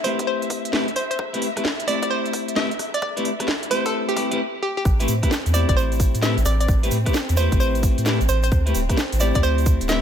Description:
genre	UK garage, two-step garage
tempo	131 BPM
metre	4/4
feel	swing 65% on 16ths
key	A minor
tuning	A4 = 439 Hz
part	hollow square pluck	melody	0.0-10.0 s	G4 to E5	-26 LUFS	right 1 dB	chorus, ping-pong delay
part	dark symphonic violin section	sustained chords	0.0-10.0 s	C4 to E5	-34 LUFS	equal	sidechain pumping, low-pass filter
part	clean electric guitar	stabs	0.0-10.0 s	A3 to C5	-26 LUFS	left 3 dB	low-pass filter
part	garage drum kit	drums	0.0-10.0 s	hi-hat, rim click, snare drum	-28 LUFS	right 1 dB	none
part	electronic kick drum	drums	0.2-9.8 s	none	-22 LUFS	equal	high-pass filter on kick, high-pass filter on room
part	soft dub sub bass	bass	4.9-10.0 s	D1 to A2	-20 LUFS	equal	none
part	egg shaker	percussion	4.9-10.0 s	none	-35 LUFS	right 6 dB	none
room	light reverb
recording	none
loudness	-19 LUFS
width	side -9 dB against mid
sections	0.0-4.9 A section; 4.9-10.0 B section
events	build-up 0.0-4.9; break 4.4-4.9; drop 4.9-10.0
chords	0.0 Am9; 8.5 D13sus4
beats	0.27 0.73 | 1.19 1.65 2.10 2.56 | 3.02 3.48 3.94 4.39 | 4.85 5.31 5.77 6.23 | 6.68 7.14 7.60 8.06 | 8.52 8.97 9.43 9.89

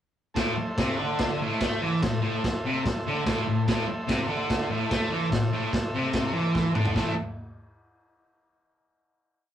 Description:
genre	garage rock duo or trio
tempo	146 BPM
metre	4/4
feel	straight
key	A minor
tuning	A4 = 442 Hz
part	overdriven combo organ	sustained chords	0.3-7.2 s	A4 to A5	-35 LUFS	right 2 dB	none
part	fuzz guitar	riff	0.4-7.1 s	A2 to A3	-26 LUFS	equal	distortion
part	crunchy breakbeat drum kit	drums	0.4-7.1 s	crash cymbal, kick drum, snare drum, toms	-28 LUFS	equal	none
room	wet studio ambience, RT60 0.5 s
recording	rough rehearsal-room recording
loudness	-24 LUFS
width	side -10 dB against mid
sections	0.4-7.0 riff; 7.0-8.6 final chord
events	transistor combo organ fill 6.3-7.0; drum fill 6.5-7.0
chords	0.4 Am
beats	| 0.36 0.77 1.19 1.60 | 2.02 2.44 2.85 3.26 | 3.67 4.09 4.50 4.91 | 5.32 5.73 6.14 6.55 | 6.96

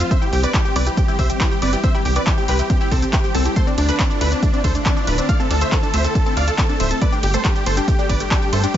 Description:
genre	uplifting trance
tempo	139 BPM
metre	4/4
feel	straight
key	C major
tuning	A4 = 439 Hz
part	dense compressed supersaw	melody	0.0-8.8 s	C4 to F5	-23 LUFS	right 1 dB	sidechain pumping, ping-pong delay
part	wide unison pluck	second line	0.0-8.8 s	D5 to F6	-30 LUFS	right 1 dB	cassette tape, sidechain pumping, ping-pong delay
part	analog string pad	sustained chords	0.0-8.8 s	D3 to F4	-29 LUFS	left 1 dB	ensemble chorus, phaser, sidechain pumping
part	tight sequenced synth	arpeggios	0.0-8.8 s	A3 to G4	-27 LUFS	left 3 dB	chorus, phaser, sidechain pumping, ping-pong delay
part	tight sequencer bass	bass	0.0-8.7 s	D1 to G2	-20 LUFS	equal	tube saturation, sidechain pumping
part	punchy analog drum machine	drums	0.0-8.8 s	handclaps, hi-hat, ride cymbal, shaker	-26 LUFS	equal	studio reverb
part	electronic kick drum	drums	0.1-8.8 s	none	-19 LUFS	equal	studio reverb
room	light reverb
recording	nothing above 7.7 kHz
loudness	-16 LUFS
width	side -11 dB against mid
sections	0.0-8.8 A section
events	none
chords	0.1 C; 3.6 Dm7; 7.0 Gsus2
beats	| 0.11 0.54 0.97 1.41 | 1.84 2.27 2.70 3.13 | 3.56 3.99 4.43 4.86 | 5.29 5.72 6.15 6.58 | 7.02 7.45 7.88 8.31 | 8.74

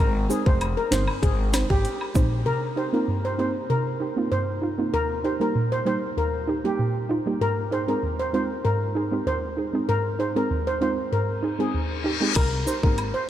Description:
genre	dancehall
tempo	97 BPM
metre	4/4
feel	straight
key	C minor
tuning	A4 = 438 Hz
part	steel pan	melody	0.0-13.3 s	G4 to C5	-27 LUFS	left 1 dB	analog delay
part	upright bass	bass	0.0-2.4, 12.4-13.1 s	F1 to C2	-26 LUFS	equal	none
part	soft round pluck	accompaniment	0.3-13.0 s	Eb2 to C5	-25 LUFS	right 2 dB	chorus, sidechain pumping
part	cabasa and woodblock	percussion	0.3-2.3, 12.4-13.1 s	none	-37 LUFS	left 1 dB	none
part	island pop drum kit	drums	0.5-2.3, 12.4-13.1 s	crash cymbal, hi-hat, kick drum, snare drum	-24 LUFS	equal	none
part	reverse cymbal	sound effects	11.8-12.4 s	none	-30 LUFS	left 7 dB	none
room	moderate huge ambient reverb, RT60 9.3 s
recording	dreamy mix soaked in reverb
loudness	-22 LUFS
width	side -11 dB against mid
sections	0.0-2.5 A section; 2.5-12.4 B section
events	reverse cymbal 11.8-12.4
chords	0.0 Ab; 2.5 Cm7; 4.9 Eb; 7.4 Ab; 12.4 Cm7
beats	0.61 1.23 1.85 | 2.46 3.08 3.70 4.32 | 4.94 5.56 6.17 6.79 | 7.41 8.03 8.65 9.27 | 9.89 10.51 11.12 11.74 | 12.36 12.98

